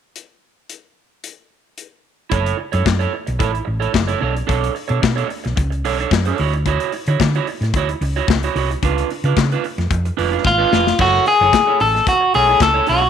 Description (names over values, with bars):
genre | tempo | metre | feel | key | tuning
disco | 111 BPM | 4/4 | straight | F# minor | A4 = 440 Hz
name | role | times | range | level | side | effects
modern studio drum kit | drums | 0.2-13.0 s | crash cymbal, handclaps, hi-hat, kick drum, snare drum | -21 LUFS | left 4 dB | none
electric guitar at the edge of break-up | accompaniment | 2.3-13.1 s | D4 to C#5 | -22 LUFS | right 11 dB | none
hollow-body short-scale fingered electric bass | bass | 2.3-13.1 s | E#1 to D3 | -20 LUFS | equal | none
electric guitar at the edge of break-up | melody | 10.5-13.1 s | E#4 to A4 | -13 LUFS | left 2 dB | slapback echo
room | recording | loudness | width
light reverb, small room ambience | 1960s-style stereo | -15 LUFS | side -8 dB against mid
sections
0.2-2.3 A section; 2.3-11.0 B section; 11.0-13.1 C section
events
drum fill 10.4-11.0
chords
0.2 N.C.; 2.3 F#m7; 4.2 Bm9; 6.4 Dmaj9; 8.8 C#7b9; 11.0 F#m7